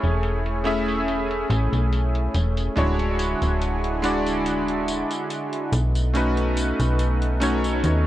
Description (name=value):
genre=vaporwave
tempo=71 BPM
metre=4/4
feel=swing 54% on 16ths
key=unclear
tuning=A4 = 440 Hz
part: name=bright electric grand piano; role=accompaniment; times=0.0-8.1 s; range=G#3 to E5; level=-24 LUFS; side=equal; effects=analog chorus, vintage 12-bit sampler grit, dub echo
part: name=lush unison pad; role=sustained chords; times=0.0-8.1 s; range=D3 to G#4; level=-29 LUFS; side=equal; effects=chorus
part: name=slap-like FM bass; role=bass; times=0.0-8.1 s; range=D1 to D#2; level=-23 LUFS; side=equal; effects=tube saturation
part: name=electronic hi-hat and tambourine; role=drums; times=0.0-8.0 s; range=none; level=-36 LUFS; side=left 1 dB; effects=overdrive, low-pass filter on hats, low-pass filter on cymbals, low-pass filter on perc, low-pass filter on room
room=light reverb, digital ambience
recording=echo-heavy mix, cassette tape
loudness=-20 LUFS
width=side -14 dB against mid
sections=0.0-8.1 A section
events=none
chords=0.0 Amaj7/E; 2.8 Dmaj9#11; 5.7 B9